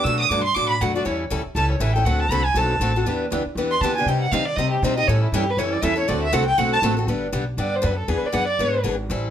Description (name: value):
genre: acoustic string swing (jazz manouche)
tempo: 239 BPM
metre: 4/4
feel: swing 57% on 8ths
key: G major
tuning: A4 = 440 Hz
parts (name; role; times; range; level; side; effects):
- dark violin; melody; 0.0-8.8 s; E4 to E6; -22 LUFS; right 1 dB; none
- picked steel-string acoustic guitar; accompaniment; 0.0-9.3 s; B2 to A4; -25 LUFS; left 3 dB; none
- upright bass; bass; 0.0-9.3 s; G1 to Eb3; -24 LUFS; equal; none
- picked steel-string acoustic guitar; accompaniment; 3.1-6.9 s; C3 to B4; -28 LUFS; right 6 dB; none
room: light reverb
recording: none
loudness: -19 LUFS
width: side -10 dB against mid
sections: 0.0-7.1 A section; 7.1-9.3 A section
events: violin solo 0.0-7.1, 7.1-9.3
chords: 0.0 Bm7; 1.1 A7; 2.1 D6; 3.1 Em7; 4.1 Cm; 5.1 A7; 6.1 D7; 7.1 G; 8.1 E7